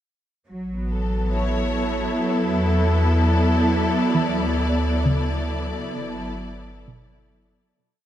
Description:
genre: ambient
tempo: 66 BPM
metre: 4/4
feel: straight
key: A mixolydian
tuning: A4 = 439 Hz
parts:
  - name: clear symphonic string section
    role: sustained chords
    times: 0.5-7.8 s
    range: F#3 to D5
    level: -22 LUFS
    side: equal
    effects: shimmer reverb
  - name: round analog bass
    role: bass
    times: 0.5-7.7 s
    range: G1 to E2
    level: -23 LUFS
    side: equal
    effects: none
  - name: soft round pluck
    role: arpeggios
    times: 4.1-8.1 s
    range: B2 to E3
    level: -27 LUFS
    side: equal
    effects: ensemble chorus, diffuse ambient delay
room: moderate huge ambient reverb, RT60 9.2 s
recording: dark, warm production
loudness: -19 LUFS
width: side -11 dB against mid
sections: 0.5-7.8 A section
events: fade-out 4.1-7.8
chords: 0.5 A69; 2.3 E5; 4.1 D69; 6.0 Gmaj7

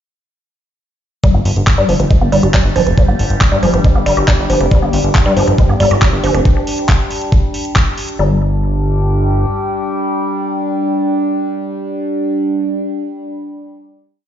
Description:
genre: psychedelic trance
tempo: 138 BPM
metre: 4/4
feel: straight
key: unclear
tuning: A4 = 439 Hz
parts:
  - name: overtone-sweeping drone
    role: sustained chords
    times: 1.6-12.5 s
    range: G3 to D4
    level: -20 LUFS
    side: equal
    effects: chorus, built-in reverb, vintage 12-bit sampler grit, sidechain pumping
  - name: woody wave-folded pluck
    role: riff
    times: 1.2-8.4 s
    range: F3 to G4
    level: -16 LUFS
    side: moving between left 5 dB and right 5 dB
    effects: chorus, auto-pan, sidechain pumping, ping-pong delay
  - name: electronic kick drum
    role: drums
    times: 1.2-7.8 s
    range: none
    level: -12 LUFS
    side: equal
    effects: none
  - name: garage drum kit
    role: drums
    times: 1.2-8.2 s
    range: handclaps, hi-hat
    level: -20 LUFS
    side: equal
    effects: none
  - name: warbly tape-like pad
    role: texture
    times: 1.6-12.4 s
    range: D4 to G5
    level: -23 LUFS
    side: right 1 dB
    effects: chorus, built-in reverb, sidechain pumping
  - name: fat analog bass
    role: bass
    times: 1.3-9.5 s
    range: F1 to G2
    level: -14 LUFS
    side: equal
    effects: none
room: little or no reverb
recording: played on a big sound system in a bare room, stone room reverb, nothing above 7.5 kHz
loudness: -12 LUFS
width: side -10 dB against mid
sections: 1.2-8.2 groove; 8.2-11.7 final chord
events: filter sweep on synth arpeggio sound 1.2-6.5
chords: 1.2 G5

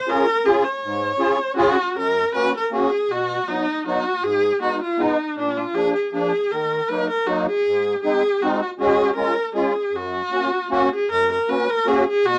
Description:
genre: alpine folk, alpine dance band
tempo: 158 BPM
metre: 3/4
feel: swing 55% on 8ths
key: F# major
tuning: A4 = 435 Hz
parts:
  - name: rich viola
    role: melody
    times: 0.0-12.4 s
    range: D4 to Db5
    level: -22 LUFS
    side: equal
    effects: none
  - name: musette accordion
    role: accompaniment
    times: 0.1-12.4 s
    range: F#2 to Ab4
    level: -24 LUFS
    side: equal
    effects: none
room: light reverb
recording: dry, close 1970s-style studio recording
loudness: -21 LUFS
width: mono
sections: 0.0-2.0 A section; 2.0-11.1 B section; 11.1-12.4 B section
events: none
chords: 0.0 Db; 2.0 F#; 3.1 B; 4.2 G#m; 5.4 A#7; 6.5 D#m; 7.7 G#; 8.8 C#sus4; 9.2 C#; 9.9 F#

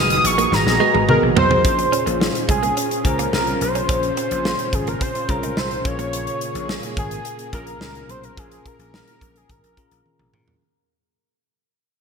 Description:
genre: 1980s-style pop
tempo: 107 BPM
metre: 4/4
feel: straight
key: Bb minor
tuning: A4 = 440 Hz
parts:
  - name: octave-doubled lead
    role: melody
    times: 0.0-10.1 s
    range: Ab4 to D#6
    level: -21 LUFS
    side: equal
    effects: chorus, digital delay
  - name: bell-like tine electric piano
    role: accompaniment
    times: 0.0-10.6 s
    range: Bb2 to F#5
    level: -27 LUFS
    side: left 3 dB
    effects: none
  - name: string machine, violas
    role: sustained chords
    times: 0.0-10.6 s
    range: Bb2 to Bb4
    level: -29 LUFS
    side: right 1 dB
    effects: ensemble chorus
  - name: direct-recorded clean electric guitar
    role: riff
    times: 0.0-6.1 s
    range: G#3 to Db4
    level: -28 LUFS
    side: right 8 dB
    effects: wide subtle chorus
  - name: vintage slap bass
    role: bass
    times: 0.0-10.5 s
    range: F#1 to Bb2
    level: -26 LUFS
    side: equal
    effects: none
  - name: modern studio drum kit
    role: drums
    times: 0.1-10.6 s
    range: hi-hat, kick drum, snare drum, toms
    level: -23 LUFS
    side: equal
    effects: gated reverb
  - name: mellow synth brass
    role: stabs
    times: 0.7-1.3 s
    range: D#3 to G#4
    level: -27 LUFS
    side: right 2 dB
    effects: none
room: moderate lush hall reverb, RT60 2.6 s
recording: bright 1980s-style digital production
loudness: -17 LUFS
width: side -6 dB against mid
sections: 0.0-1.6 A section; 1.6-10.6 B section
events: band accent 0.0-1.6; drum fill 0.5-1.6, 10.1-10.6; fade-out 1.6-10.6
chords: 0.0 B6; 1.6 Dbmaj7/Bb; 5.8 Bbm7

